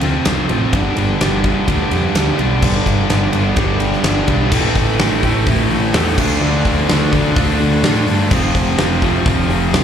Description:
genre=quiet-loud alternative rock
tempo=127 BPM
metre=4/4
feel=straight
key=unclear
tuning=A4 = 440 Hz
part: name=crunchy overdriven guitar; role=riff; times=0.0-9.8 s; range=F2 to D4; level=-20 LUFS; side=right 9 dB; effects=none
part: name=tight distorted guitar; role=riff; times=0.0-9.8 s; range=G2 to F4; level=-21 LUFS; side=left 10 dB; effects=distortion, slapback echo
part: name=growling picked electric bass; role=bass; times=0.0-9.8 s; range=F1 to A2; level=-19 LUFS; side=left 1 dB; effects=overdrive
part: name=huge arena drum kit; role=drums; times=0.0-9.8 s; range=crash cymbal, hi-hat, kick drum, ride cymbal, snare drum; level=-18 LUFS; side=equal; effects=none
part: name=distorted electric guitar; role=riff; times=2.6-9.8 s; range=F2 to D4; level=-22 LUFS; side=equal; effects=overdrive
room=light reverb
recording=live gig heard through the venue's PA, club reverb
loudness=-13 LUFS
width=side -8 dB against mid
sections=0.0-2.6 A section; 2.6-4.5 B section; 4.5-9.8 C section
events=none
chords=0.0 F; 0.7 G; 4.5 Am; 6.2 Dm; 8.3 F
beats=0.25 | 0.73 1.20 1.68 2.15 | 2.63 3.10 3.58 4.05 | 4.52 5.00 5.47 5.94 | 6.42 6.89 7.36 7.84 | 8.31 8.78 9.26 9.73

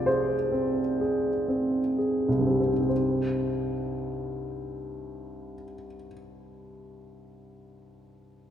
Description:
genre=classical, romantic nocturne for solo piano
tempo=19-25 BPM (dotted quarters)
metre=12/8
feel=rubato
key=C minor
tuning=A4 = 442 Hz
part: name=warm upright piano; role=solo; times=0.0-8.5 s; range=C2 to D5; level=-26 LUFS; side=equal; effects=none
room=wet church reverb, RT60 3.1 s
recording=recorded in a church or concert hall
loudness=-24 LUFS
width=side -10 dB against mid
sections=0.0-2.9 A section; 2.9-8.5 B section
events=slowing down 0.0-2.9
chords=0.0 Fm/C; 2.9 Cm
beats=0.09 | 2.90 5.37 7.86

